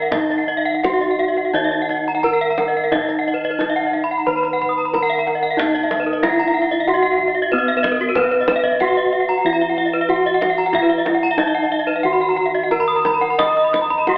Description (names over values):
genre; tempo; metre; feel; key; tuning
Balinese gamelan; 83-93 BPM; 4/4; straight; Eb pelog; A4 = 440 Hz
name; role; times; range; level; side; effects
gamelan-type bronze metallophone; melody; 0.0-14.2 s; Cb4 to Eb5; -20 LUFS; equal; none
gamelan-type bronze metallophone; arpeggios; 0.0-14.2 s; Gb4 to Eb6; -20 LUFS; left 1 dB; none
gamelan-type bronze metallophone; arpeggios; 0.0-14.1 s; Bb4 to Eb6; -22 LUFS; right 1 dB; none
gamelan-type bossed gongs; bass; 0.0-14.2 s; Eb2 to Eb5; -25 LUFS; equal; none
kendang; percussion; 0.1-14.2 s; none; -27 LUFS; equal; none
room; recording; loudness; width
moderate scoring stage reverb, RT60 1.8 s; telephone sound; -15 LUFS; side -26 dB against mid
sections
0.0-5.6 A section; 5.6-14.2 B section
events
none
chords
none